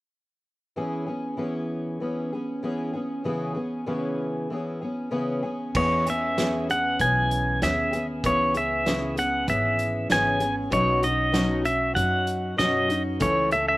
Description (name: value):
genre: acoustic folk duo or small band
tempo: 96 BPM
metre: 4/4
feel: straight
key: E major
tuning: A4 = 440 Hz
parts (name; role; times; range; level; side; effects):
- fingerpicked twelve-string acoustic guitar; accompaniment; 0.8-13.8 s; B2 to A4; -27 LUFS; left 1 dB; none
- upright bass; bass; 5.7-13.8 s; G#1 to F#2; -31 LUFS; equal; none
- loose indie drum kit; drums; 5.7-13.7 s; crash cymbal, hi-hat, kick drum, snare drum; -31 LUFS; right 1 dB; none
- pedal steel guitar; melody; 5.8-13.8 s; C#5 to G#5; -23 LUFS; equal; slapback echo
room: little or no reverb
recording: none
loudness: -22 LUFS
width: side -18 dB against mid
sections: 0.8-5.8 A section; 5.8-13.8 B section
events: none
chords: 0.8 E6; 3.3 C#m7; 5.8 E6; 8.2 C#m7; 10.7 Badd9; 13.2 A/C#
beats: | 0.76 1.39 2.01 2.64 | 3.26 3.88 4.51 5.13 | 5.75 6.38 7.00 7.62 | 8.24 8.86 9.48 10.11 | 10.73 11.35 11.97 12.59 | 13.21